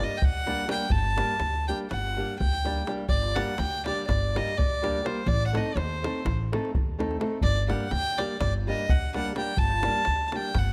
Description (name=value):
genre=balkan folk, Balkan wedding band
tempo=249 BPM (eighths)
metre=9/8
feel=straight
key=G harmonic minor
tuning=A4 = 440 Hz
part: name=rich fiddle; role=melody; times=0.0-10.7 s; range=C5 to A5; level=-31 LUFS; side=equal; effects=none
part: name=nylon-string guitar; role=accompaniment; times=0.0-10.5 s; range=G3 to A4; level=-35 LUFS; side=equal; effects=none
part: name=davul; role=percussion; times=0.1-10.7 s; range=none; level=-32 LUFS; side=equal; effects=none
part: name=upright bass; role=bass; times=0.2-10.7 s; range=G1 to Eb2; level=-32 LUFS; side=equal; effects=none
room=light reverb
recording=close, detailed microphones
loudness=-27 LUFS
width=mono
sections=0.0-3.1 A section; 3.1-10.7 A section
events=none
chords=0.0 Gm; 5.3 Adim; 7.4 Gm